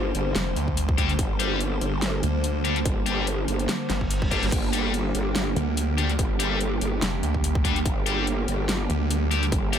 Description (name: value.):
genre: heavy wobble dubstep.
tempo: 144 BPM.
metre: 4/4.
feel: swing 55% on 16ths, half-time.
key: G minor.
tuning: A4 = 440 Hz.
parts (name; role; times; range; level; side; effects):
evolving wavetable pad; sustained chords; 0.0-9.8 s; D3 to C5; -29 LUFS; right 2 dB; chorus, built-in reverb, vintage 12-bit sampler grit, sidechain pumping.
growl bass; bass; 0.0-9.8 s; G1; -27 LUFS; equal; chorus, overdrive.
dubstep drum kit; drums; 0.1-9.8 s; crash cymbal, hi-hat, snare drum; -30 LUFS; left 1 dB; none.
snarling distorted saw bass; bass; 0.4-9.5 s; F1 to D2; -25 LUFS; equal; overdrive.
electronic kick drum; drums; 0.7-9.6 s; none; -26 LUFS; equal; none.
distorted electric guitar; stabs; 1.0-9.8 s; G3 to G4; -30 LUFS; left 5 dB; overdrive, ping-pong delay.
reverse cymbal; sound effects; 3.9-4.5 s; none; -36 LUFS; right 1 dB; none.
room: light reverb.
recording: none.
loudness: -22 LUFS.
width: side -8 dB against mid.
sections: 0.0-9.8 A section.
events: reverse cymbal 3.9-4.5.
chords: 0.0 Gm.